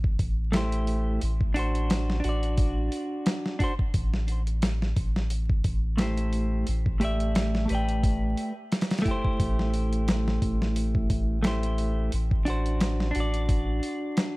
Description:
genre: trip hop.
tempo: 88 BPM.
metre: 4/4.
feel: swing 56% on 16ths.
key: A dorian.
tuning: A4 = 440 Hz.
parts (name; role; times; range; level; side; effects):
soft dub sub bass; bass; 0.0-13.8 s; A1; -27 LUFS; equal; none.
dusty soul sampler-style drum kit; drums; 0.0-14.4 s; hi-hat, kick drum, snare drum; -27 LUFS; equal; small room ambience.
clean electric guitar; accompaniment; 0.5-14.4 s; A3 to G5; -30 LUFS; equal; harmonic tremolo, vintage 12-bit sampler grit, tape echo.
room: digital ambience.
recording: dark, warm production, vinyl crackle.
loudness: -24 LUFS.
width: side -22 dB against mid.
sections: 0.0-14.4 A section.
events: none.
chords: 0.0 Am7; 1.2 D7/A; 3.9 Am7; 6.7 Cmaj9/A (rootless); 9.4 Am7; 12.1 D7/A.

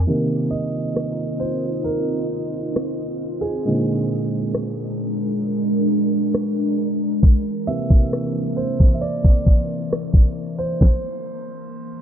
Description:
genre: contemporary R&B.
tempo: 67 BPM.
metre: 4/4.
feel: straight.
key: C minor.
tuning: A4 = 440 Hz.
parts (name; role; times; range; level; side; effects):
warm concert grand piano; accompaniment; 0.0-12.0 s; Bb2 to E5; -24 LUFS; right 2 dB; none.
ethereal airy pad; sustained chords; 0.0-10.8 s; E3 to Eb5; -24 LUFS; equal; ensemble chorus, built-in reverb.
smooth R&B drum kit; drums; 1.0-11.0 s; kick drum, rim click, snare drum; -14 LUFS; equal; vintage 12-bit sampler grit.
room: light reverb, digital ambience.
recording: low-pass filter, lossy compression artefacts.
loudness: -18 LUFS.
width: side -10 dB against mid.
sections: 0.1-12.0 A section.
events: grand piano solo 0.1-12.0; filter sweep 0.1-12.0; stop 10.8-12.0.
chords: 0.1 Cm7; 3.6 Bb7; 7.2 C7; 10.8 N.C..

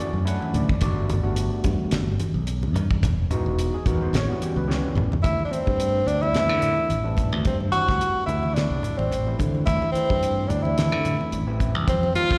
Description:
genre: electric jazz fusion.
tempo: 108 BPM.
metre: 4/4.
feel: swing 56% on 16ths.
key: unclear.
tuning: A4 = 441 Hz.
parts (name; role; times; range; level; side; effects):
overdriven tine electric piano; accompaniment; 0.0-12.4 s; E3 to F#5; -32 LUFS; equal; lush chorus, slapback echo.
damped 70s drum kit; drums; 0.0-12.4 s; hi-hat, kick drum, snare drum, toms; -28 LUFS; equal; none.
modern bright fingered electric bass; bass; 0.1-12.4 s; E1 to D3; -27 LUFS; equal; none.
congas; percussion; 0.4-12.3 s; none; -33 LUFS; equal; slapback echo.
clear tenor saxophone; melody; 5.2-12.4 s; C4 to F#4; -26 LUFS; equal; slapback echo, tape echo.
room: light reverb, small room reverb.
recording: live gig heard through the venue's PA, recital hall reverb.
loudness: -23 LUFS.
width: mono.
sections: 0.0-5.2 A section; 5.2-12.4 B section.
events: drum fill 4.7-5.2.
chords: 0.0 Dmaj9; 0.8 Gmaj9; 3.0 Emaj9; 4.1 A13; 5.2 D9sus4; 11.9 F9sus4.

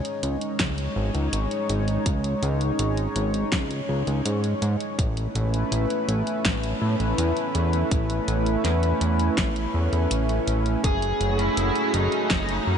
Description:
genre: synthwave.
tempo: 82 BPM.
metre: 4/4.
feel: straight.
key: C# minor.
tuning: A4 = 440 Hz.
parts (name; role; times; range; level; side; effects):
chorused pulse-width pad; sustained chords; 0.0-12.8 s; G#3 to C#5; -26 LUFS; right 1 dB; sidechain pumping.
pop drum kit; drums; 0.0-12.6 s; hi-hat, snare drum; -32 LUFS; equal; none.
fat analog bass; bass; 0.2-12.8 s; F#1 to A2; -25 LUFS; equal; tube saturation, sidechain pumping.
electronic kick drum; drums; 0.6-12.4 s; none; -26 LUFS; equal; none.
bluesy overdriven lead guitar; melody; 10.8-12.8 s; D#4 to G#4; -25 LUFS; equal; distortion, ping-pong delay.
room: moderate huge ambient reverb, RT60 9.3 s.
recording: dreamy mix soaked in reverb, nothing above 10.5 kHz.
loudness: -22 LUFS.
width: side -7 dB against mid.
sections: 0.0-12.8 A section.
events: none.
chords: 0.0 C#sus2; 5.0 Aadd9; 10.8 F#madd9.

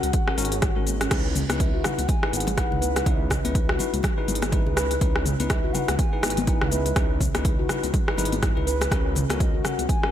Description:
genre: afro house.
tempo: 123 BPM.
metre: 4/4.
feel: swing 58% on 16ths.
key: C# dorian.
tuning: A4 = 437 Hz.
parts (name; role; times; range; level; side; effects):
breathy bass bansuri; melody; 0.0-10.1 s; D#5 to G#5; -34 LUFS; left 1 dB; ping-pong delay.
handpan; arpeggios; 0.0-10.1 s; G#3 to C#5; -31 LUFS; equal; sidechain pumping, ping-pong delay.
bell-like tine electric piano; stabs; 0.0-10.1 s; C#4 to B4; -32 LUFS; left 5 dB; sidechain pumping, ping-pong delay.
dark detuned saw bass; bass; 0.0-9.9 s; G#1 to C#2; -28 LUFS; equal; sidechain pumping.
afro-pop drum kit; drums; 0.0-10.1 s; crash cymbal, hi-hat, rim click, shaker, toms; -27 LUFS; equal; none.
electronic kick drum; drums; 0.1-10.0 s; none; -24 LUFS; equal; overdrive.
congas; percussion; 1.4-10.0 s; none; -33 LUFS; left 4 dB; none.
room: light reverb, digital ambience.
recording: none.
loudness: -21 LUFS.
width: side -10 dB against mid.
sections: 0.0-10.1 A section.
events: none.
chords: 0.0 D#m7 (rootless); 1.1 C#m9; 8.9 D#m7.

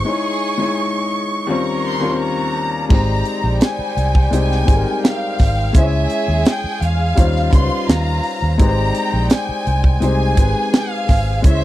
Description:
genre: lush 1970s-style soul.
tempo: 84 BPM.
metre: 4/4.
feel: straight.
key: Ab major.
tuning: A4 = 440 Hz.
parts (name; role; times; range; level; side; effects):
warm studio violin section; melody; 0.0-11.6 s; Fb5 to Db6; -22 LUFS; equal; none.
clear grand piano; accompaniment; 0.0-11.6 s; Eb2 to Db5; -22 LUFS; left 3 dB; none.
dark studio violin section; second line; 0.1-11.6 s; G3 to C6; -28 LUFS; right 2 dB; none.
vintage muted fingered electric bass; bass; 2.9-11.6 s; Ab1 to Fb2; -18 LUFS; equal; none.
tight funk drum kit; drums; 2.9-11.6 s; crash cymbal, hi-hat, kick drum, snare drum; -14 LUFS; equal; none.
room: little or no reverb.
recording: dry, close 1970s-style studio recording.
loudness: -14 LUFS.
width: side -14 dB against mid.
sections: 0.0-2.9 A section; 2.9-11.6 B section.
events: break 0.1-2.9.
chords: 0.1 Dbmadd9; 1.5 Eb13; 2.9 Abmaj7; 5.8 Dbm; 7.2 Eb13; 8.6 Abmaj7.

